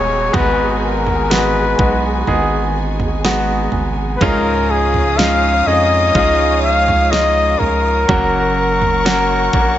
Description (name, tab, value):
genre	pop ballad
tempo	62 BPM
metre	4/4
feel	straight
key	G# dorian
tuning	A4 = 440 Hz
part	warm flugelhorn	melody	0.0-9.8 s	G#4 to E#5	-16 LUFS	left 2 dB	tape echo
part	clear concert grand piano	accompaniment	0.0-9.8 s	G#2 to G#4	-19 LUFS	equal	none
part	warm studio string section	sustained chords	0.0-9.8 s	F#4 to D#6	-24 LUFS	left 1 dB	none
part	saturated sub bass	bass	0.0-9.8 s	D#1 to E#2	-20 LUFS	right 1 dB	none
part	downlifter	sound effects	0.0-4.2 s	none	-30 LUFS	right 2 dB	none
part	pop drum kit	drums	0.3-9.8 s	kick drum, snare drum, toms	-20 LUFS	right 2 dB	none
part	direct-recorded clean electric guitar	arpeggios	4.2-9.8 s	C#3 to A#4	-24 LUFS	right 7 dB	analog chorus
room	light reverb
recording	nothing above 7.7 kHz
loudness	-13 LUFS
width	side -12 dB against mid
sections	0.0-9.8 A section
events	none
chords	0.0 G#m7; 4.2 C#add9; 8.1 F#